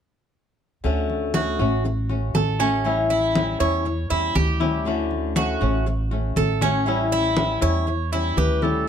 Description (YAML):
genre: latin, Cuban son and guajira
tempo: 120 BPM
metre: 4/4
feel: straight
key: D major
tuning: A4 = 437 Hz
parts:
  - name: flamenco guitar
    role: accompaniment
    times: 0.8-8.9 s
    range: D3 to F#4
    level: -24 LUFS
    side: left 5 dB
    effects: none
  - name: upright bass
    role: bass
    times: 0.8-8.9 s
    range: A1 to E2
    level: -25 LUFS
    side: right 1 dB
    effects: none
  - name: congas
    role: percussion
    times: 0.8-8.9 s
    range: none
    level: -26 LUFS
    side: left 1 dB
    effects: none
  - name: Cuban tres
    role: arpeggios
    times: 1.3-8.9 s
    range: C#4 to C#5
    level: -25 LUFS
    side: right 6 dB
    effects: tape echo
  - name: warm clarinet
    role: melody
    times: 8.4-8.9 s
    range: A4 to B4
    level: -24 LUFS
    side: left 1 dB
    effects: none
room: light reverb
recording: none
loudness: -20 LUFS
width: side -8 dB against mid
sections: 0.8-8.9 A section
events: none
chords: 0.8 Dmaj7; 2.9 A7; 4.9 Dmaj7; 6.9 A7